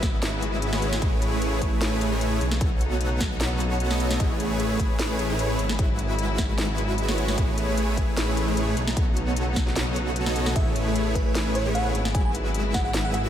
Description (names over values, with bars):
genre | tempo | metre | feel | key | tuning
future bass | 151 BPM | 4/4 | half-time | A lydian | A4 = 439 Hz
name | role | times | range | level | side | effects
clear symphonic string section | sustained chords | 0.0-13.3 s | C#3 to G#4 | -33 LUFS | left 2 dB | sidechain pumping
supersaw chords | riff | 0.0-13.3 s | G#3 to F#5 | -28 LUFS | right 1 dB | lush chorus, sidechain pumping, analog delay
wide detuned saw bass | bass | 0.0-13.3 s | G#1 to B1 | -27 LUFS | equal | chorus, sidechain pumping
electronic kick drum | drums | 0.0-12.8 s | none | -25 LUFS | equal | none
trap drum kit | drums | 0.0-13.2 s | hi-hat, snare drum | -31 LUFS | equal | none
downlifter | sound effects | 0.0-1.0 s | none | barely audible | none | none
bell-like FM electric piano | melody | 10.6-13.2 s | B4 to G#5 | -31 LUFS | right 1 dB | chorus, sidechain pumping, analog delay
room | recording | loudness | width
moderate lush hall reverb, RT60 1.8 s | dreamy mix soaked in reverb | -22 LUFS | side -10 dB against mid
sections
0.0-13.3 A section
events
none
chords
0.0 E69/G#; 1.0 Amaj9; 2.4 B9; 4.2 Amaj9; 5.6 E69/G#; 7.4 Amaj9; 8.8 B9; 10.6 Amaj9; 11.9 E69/G#